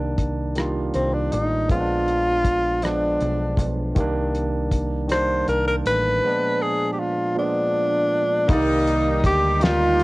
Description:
slow six-eight R&B; 53 BPM (dotted quarters); 6/8; straight; C minor; A4 = 443 Hz
barky tine electric piano; accompaniment; 0.0-10.0 s; Bb2 to D5; -25 LUFS; right 2 dB; slow stereo tremolo, cassette tape
deep dub picked electric bass; bass; 0.0-10.0 s; A1 to D2; -26 LUFS; equal
cloth-damped thuddy drum kit; drums; 0.2-10.0 s; hi-hat, kick drum, rim click, snare drum; -22 LUFS; equal; cassette tape
breathy tenor saxophone; melody; 0.9-10.0 s; C4 to C5; -21 LUFS; equal; cassette tape
clear horn section; stabs; 8.5-10.0 s; G3 to G4; -28 LUFS; left 1 dB; cassette tape
light reverb; home recording on cassette; -19 LUFS; side -21 dB against mid
0.0-8.5 A section; 8.5-10.0 B section
0.0 Cm9; 1.7 Bb7b9; 4.0 Cm9; 6.2 Bb7b9; 8.5 Cm9

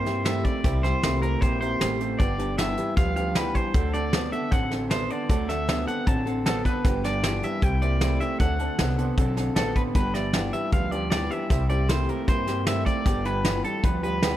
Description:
rockabilly; 155 BPM; 4/4; straight; G mixolydian; A4 = 440 Hz
electric guitar at the edge of break-up; melody; 0.0-14.4 s; A4 to A5; -30 LUFS; equal; tape echo
picked old ladder-braced acoustic guitar; accompaniment; 0.0-14.4 s; G2 to A4; -33 LUFS; left 4 dB
electric guitar through a small old amp; riff; 0.0-14.4 s; G2 to C4; -30 LUFS; right 2 dB
upright bass; bass; 0.0-14.4 s; G1 to G2; -28 LUFS; equal
warm upright piano; accompaniment; 0.1-14.3 s; A4 to C6; -36 LUFS; right 10 dB
soft brush drum kit; drums; 0.1-14.3 s; hi-hat, kick drum, snare drum; -25 LUFS; equal
light reverb, studio ambience; -22 LUFS; side -13 dB against mid
0.0-10.0 A section; 10.0-14.4 A section
upright piano fill 9.4-10.0
0.0 C7; 2.2 G7; 3.7 D7; 6.8 G7; 7.6 C7; 8.4 D7; 10.0 G7; 11.5 C7; 13.1 G7

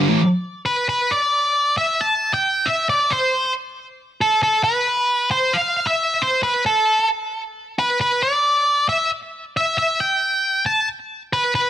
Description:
rock; 135 BPM; 4/4; straight; A4 = 436 Hz
octave-fuzz lead guitar; melody; 0.7-11.7 s; A4 to A5; -17 LUFS; equal; distortion, plate reverb, digital delay
wet studio reverb, RT60 0.5 s; dense, heavily limited modern master; -17 LUFS; side -11 dB against mid
0.2-11.7 A section
half time 0.2-11.7

